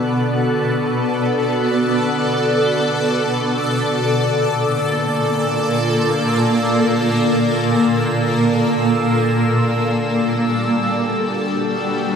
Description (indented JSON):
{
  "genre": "ambient",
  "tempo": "free time",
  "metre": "none",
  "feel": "none",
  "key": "unclear",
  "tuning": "A4 = 440 Hz",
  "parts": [
    { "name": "shimmering ambient pad", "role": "sustained chords", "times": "0.0-12.2 s", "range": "Bb2 to D5", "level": "-16 LUFS", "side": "equal", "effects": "chorus, built-in reverb, phaser" },
    { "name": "bowed-like drone", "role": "drone", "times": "0.0-12.2 s", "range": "D3", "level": "-28 LUFS", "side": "equal", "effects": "built-in reverb" },
    { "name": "drifting glass-harmonics texture", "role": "texture", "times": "0.0-12.2 s", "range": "E6 to F#6", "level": "-28 LUFS", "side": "equal", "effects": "chorus, built-in reverb" }
  ],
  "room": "wet lush hall reverb, RT60 2.6 s",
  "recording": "none",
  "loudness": "-15 LUFS",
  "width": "side -7 dB against mid",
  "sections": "0.0-12.2 A section",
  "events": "fade-in on synth texture 0.0-12.2; fade-out on synth drone 0.0-12.2",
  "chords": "0.0 Bm7; 3.6 Bbmaj7; 9.7 Gmaj7"
}